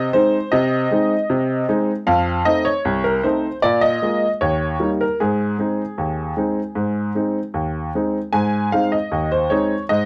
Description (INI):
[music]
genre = ragtime piano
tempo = 77 BPM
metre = 2/4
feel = straight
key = Ab major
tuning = A4 = 440 Hz
[part]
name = bright upright piano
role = solo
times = 0.0-10.1 s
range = C2 to Ab5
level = -20 LUFS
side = equal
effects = none
[sound]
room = light reverb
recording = close, detailed microphones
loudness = -20 LUFS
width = mono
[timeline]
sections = 0.0-8.3 A section; 8.3-10.1 A section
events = none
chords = 0.0 Ab/C; 2.1 F7; 3.6 Bb5; 4.4 Eb7; 5.2 Ab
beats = | 0.53 1.30 | 2.08 2.85 | 3.63 4.41 | 5.20 5.99 | 6.77 7.56 | 8.35 9.13 | 9.91